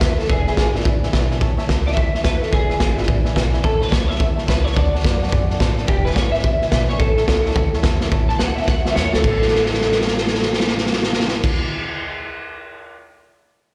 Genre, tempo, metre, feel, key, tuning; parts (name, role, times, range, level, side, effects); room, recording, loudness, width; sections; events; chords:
rockabilly; 215 BPM; 4/4; swing 62% on 8ths; A major; A4 = 440 Hz
electric guitar through a small old amp; melody; 0.0-11.4 s; G4 to A5; -25 LUFS; equal; ensemble chorus, slapback echo, analog delay
picked old ladder-braced acoustic guitar; accompaniment; 0.0-12.0 s; E2 to F#4; -34 LUFS; equal; slapback echo
tack piano; accompaniment; 0.0-11.5 s; B4 to B5; -34 LUFS; equal; slapback echo
upright bass; bass; 0.0-11.4 s; E1 to A2; -25 LUFS; equal
raw garage drum kit; drums; 0.0-12.9 s; crash cymbal, hi-hat, kick drum, snare drum; -21 LUFS; equal
light reverb, small room ambience; live gig heard through the venue's PA, recital hall reverb; -19 LUFS; mono
0.0-8.1 A section; 8.1-9.2 B section; 9.2-11.5 C section
drum fill 8.0, 8.7-9.2, 9.4-11.4
0.3 E7; 1.4 A; 2.5 E7; 3.6 A; 4.8 D; 5.9 E7; 7.0 A